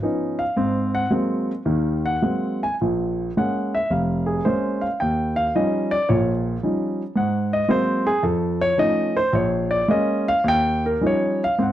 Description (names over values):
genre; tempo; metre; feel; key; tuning
solo jazz; 109 BPM; 4/4; swing 69% on 8ths, rubato; Ab mixolydian; A4 = 439 Hz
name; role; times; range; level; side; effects
warm grand piano; solo; 0.0-11.7 s; F1 to Ab5; -19 LUFS; equal; slapback echo
room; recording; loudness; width
light reverb; dry, close 1970s-style studio recording; -19 LUFS; side -12 dB against mid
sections
0.0-11.6 A section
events
grand piano solo 0.0-11.7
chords
0.0 Db9; 0.6 Ab9; 2.8 Bbm7; 5.0 Eb9; 7.2 Ab9; 8.2 Faug7; 9.3 Bbm7; 10.4 Eb9